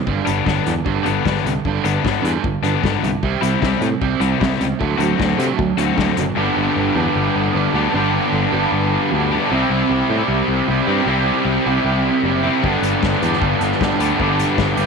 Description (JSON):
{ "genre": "indie rock", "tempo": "153 BPM", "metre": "4/4", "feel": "straight", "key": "G major", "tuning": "A4 = 440 Hz", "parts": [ { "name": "fuzz guitar", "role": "riff", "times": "0.0-14.9 s", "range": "G2 to G4", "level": "-20 LUFS", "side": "right 11 dB", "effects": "distortion, ensemble chorus, slapback echo" }, { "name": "picked electric bass", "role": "bass", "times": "0.1-14.9 s", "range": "F#1 to C3", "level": "-22 LUFS", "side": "equal", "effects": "none" }, { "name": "unplugged drum kit", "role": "drums", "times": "0.1-6.3, 12.6-14.9 s", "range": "hi-hat, kick drum, snare drum", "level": "-24 LUFS", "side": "left 5 dB", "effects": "none" }, { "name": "cranked stack guitar", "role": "riff", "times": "0.3-14.9 s", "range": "G2 to F#4", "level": "-20 LUFS", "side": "left 12 dB", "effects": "overdrive" } ], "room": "moderate echo chamber reverb, RT60 1.4 s, small room ambience", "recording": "1960s-style stereo with parts hard left and right", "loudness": "-16 LUFS", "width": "side -5 dB against mid", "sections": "0.0-6.4 A section; 6.4-14.9 B section", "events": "none", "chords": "0.1 G; 3.2 C; 4.8 D7; 6.4 G; 9.5 C; 12.6 G", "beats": "| 0.08 0.47 0.86 1.25 | 1.65 2.04 2.43 2.83 | 3.22 3.61 4.01 4.40 | 4.79 5.19 5.58 5.98 | 6.37 6.76 7.16 7.55 | 7.94 8.34 8.73 9.12 | 9.51 9.90 10.29 10.69 | 11.08 11.47 11.86 12.25 | 12.63 13.02 13.41 13.80 | 14.19 14.58" }